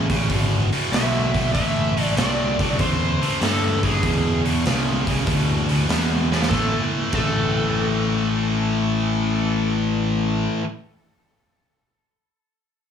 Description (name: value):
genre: blues rock power trio and southern rock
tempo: 97 BPM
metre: 4/4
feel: swing 68% on 8ths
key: A minor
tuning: A4 = 440 Hz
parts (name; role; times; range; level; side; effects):
- tight distorted guitar; riff; 0.0-10.7 s; E2 to A3; -23 LUFS; left 1 dB; distortion
- growling picked electric bass; bass; 0.0-10.5 s; G#1 to G2; -23 LUFS; left 1 dB; overdrive
- raw garage drum kit; drums; 0.1-7.4 s; crash cymbal, hi-hat, kick drum, snare drum; -24 LUFS; right 1 dB; none
- overdriven slide guitar; melody; 0.9-9.8 s; G#4 to E5; -27 LUFS; left 1 dB; none
room: light reverb, small room ambience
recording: studio ambience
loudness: -18 LUFS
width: side -8 dB against mid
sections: 0.0-6.5 A section; 6.5-9.0 B section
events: drum fill 6.2-6.5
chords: 0.0 E; 1.5 Am7; 4.0 E5; 6.5 A5